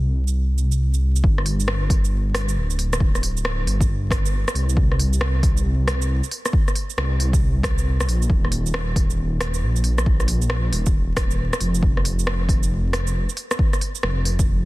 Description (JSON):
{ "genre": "future garage", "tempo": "136 BPM", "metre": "4/4", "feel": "swing 64% on 16ths", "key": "G minor", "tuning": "A4 = 442 Hz", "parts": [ { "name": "dark detuned saw bass", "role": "bass", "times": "0.0-14.7 s", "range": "D1 to C2", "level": "-21 LUFS", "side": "equal", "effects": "sidechain pumping" }, { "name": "deep house drum kit", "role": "drums", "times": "0.3-14.5 s", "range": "hi-hat, rim click, shaker", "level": "-26 LUFS", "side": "equal", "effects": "soft clipping on snare" }, { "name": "electronic kick drum", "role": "drums", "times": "1.2-14.5 s", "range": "none", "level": "-20 LUFS", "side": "equal", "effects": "none" } ], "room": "little or no reverb", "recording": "dense, heavily limited modern master, vinyl crackle", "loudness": "-18 LUFS", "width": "side -19 dB against mid", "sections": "0.0-1.2 A section; 1.2-14.7 B section", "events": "none", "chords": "none", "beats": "0.35 0.80 | 1.24 1.68 2.12 2.56 | 3.00 3.44 3.88 4.33 | 4.77 5.21 5.65 6.09 | 6.53 6.97 7.41 7.86 | 8.30 8.74 9.18 9.62 | 10.06 10.50 10.94 11.38 | 11.83 12.27 12.71 13.15 | 13.59 14.03 14.47" }